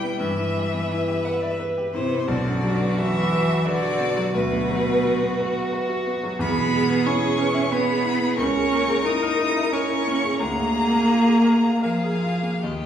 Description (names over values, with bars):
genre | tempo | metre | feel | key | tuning
classical, slow romantic movement for piano quartet | 72-91 BPM | 3/4 | rubato | unclear | A4 = 441 Hz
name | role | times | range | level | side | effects
clear violin | melody | 0.0-12.9 s | B4 to D#6 | -27 LUFS | left 3 dB | none
rich cello | second line | 0.0-12.9 s | B2 to D#4 | -23 LUFS | right 2 dB | none
rich violin | second line | 0.0-12.9 s | F#4 to B4 | -29 LUFS | left 2 dB | none
clear grand piano | accompaniment | 0.0-12.9 s | B1 to F#5 | -25 LUFS | equal | none
room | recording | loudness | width
wet recital hall reverb, RT60 1.5 s | heard from further back in the room | -19 LUFS | side -9 dB against mid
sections
0.0-12.9 A section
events
none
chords
0.2 Em/G; 2.3 Bm; 4.3 Bm/D; 6.4 E; 8.4 A#dim/C#; 10.4 A#7/D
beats
| 0.21 0.90 1.60 | 2.29 2.99 3.66 | 4.34 5.05 5.73 | 6.39 7.06 7.72 | 8.38 9.06 9.73 | 10.41 11.09 11.83 | 12.63